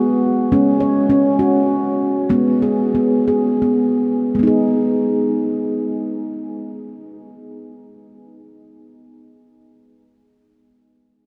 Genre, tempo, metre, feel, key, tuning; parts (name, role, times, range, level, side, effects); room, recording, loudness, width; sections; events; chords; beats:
world meditative; 52-70 BPM (dotted quarters); 6/8; straight; G# minor pentatonic; A4 = 442 Hz
handpan; arpeggios; 0.0-9.2 s; G#3 to C#5; -18 LUFS; equal
wet huge ambient reverb, RT60 7.3 s; dreamy mix soaked in reverb; -17 LUFS; mono
0.0-4.4 A section; 4.4-8.9 B section
slowing down 0.5-4.4
0.0 B5/G#; 0.5 F#5/G#; 2.3 G#m
| 0.51 1.38 | 2.29 3.27 | 4.35 5.50 | 6.65 7.80